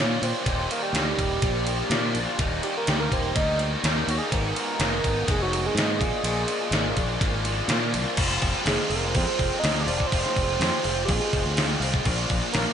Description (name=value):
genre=indie rock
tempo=124 BPM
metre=4/4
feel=straight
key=unclear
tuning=A4 = 440 Hz
part: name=lead with added fifth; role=melody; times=0.0-12.7 s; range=Gb4 to Eb5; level=-29 LUFS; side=right 3 dB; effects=chorus, slapback echo, tape echo
part: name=biting overdriven guitar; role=riff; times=0.0-12.7 s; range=Eb2 to F4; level=-31 LUFS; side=right 6 dB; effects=analog chorus, tape echo
part: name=raw garage guitar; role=riff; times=0.0-12.7 s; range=Eb2 to F4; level=-31 LUFS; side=left 7 dB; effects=overdrive, spring reverb, slapback echo
part: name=growling fingered electric bass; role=bass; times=0.0-12.6 s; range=Eb1 to Bb2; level=-29 LUFS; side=equal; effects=overdrive
part: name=detuned 8-bit digital drum machine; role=drums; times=0.0-12.7 s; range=crash cymbal, kick drum, ride cymbal, snare drum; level=-26 LUFS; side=equal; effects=none
part: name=hollow soft pad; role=sustained chords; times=1.4-12.7 s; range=Cb4 to Eb6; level=-39 LUFS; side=right 1 dB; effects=none
room=moderate concert hall reverb, RT60 1.9 s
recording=big arena sound, nothing above 10.6 kHz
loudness=-22 LUFS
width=side -8 dB against mid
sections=0.0-8.2 A section; 8.2-12.7 B section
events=analog synth lead solo 0.0-8.2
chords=0.5 Ebmaj7; 1.4 Bb; 2.4 Ebmaj7; 4.3 Abm; 6.0 Bb7; 8.2 Fmadd9; 12.1 Bb